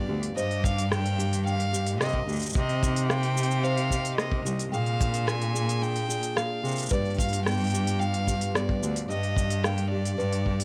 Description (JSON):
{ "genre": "folktronica", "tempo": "110 BPM", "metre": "4/4", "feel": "straight", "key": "unclear", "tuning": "A4 = 440 Hz", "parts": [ { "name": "rich violin", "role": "melody", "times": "0.0-10.6 s", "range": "D5 to Ab5", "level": "-35 LUFS", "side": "equal", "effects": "vintage 12-bit sampler grit, tape echo, plate reverb" }, { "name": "warbly tape-like pad", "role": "sustained chords", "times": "0.1-10.6 s", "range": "C3 to F5", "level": "-42 LUFS", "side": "equal", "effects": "none" }, { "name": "fingerpicked steel-string acoustic guitar", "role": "arpeggios", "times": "0.0-10.6 s", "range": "G2 to Ab4", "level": "-37 LUFS", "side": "equal", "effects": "vintage 12-bit sampler grit, plate reverb" }, { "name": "bright cello", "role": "bass", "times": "0.0-10.6 s", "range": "C2 to C3", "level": "-30 LUFS", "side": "equal", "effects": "none" }, { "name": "organic electronic drum kit", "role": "drums", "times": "0.2-10.6 s", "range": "cabasa, hi-hat, rim click", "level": "-34 LUFS", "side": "equal", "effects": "none" }, { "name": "folk marimba with soft mallets", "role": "second line", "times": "0.4-10.4 s", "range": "B4 to G5", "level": "-38 LUFS", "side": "equal", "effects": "delay, plate reverb" }, { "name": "kick drum", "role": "drums", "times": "0.6-10.6 s", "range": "none", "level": "-32 LUFS", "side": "equal", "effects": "none" } ], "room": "light reverb", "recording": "none", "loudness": "-27 LUFS", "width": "mono", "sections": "0.0-10.6 A section", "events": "none", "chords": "0.4 Ebmaj7/G; 2.5 Cm7; 4.7 Bb7; 6.9 G7; 9.1 Ebmaj7/G" }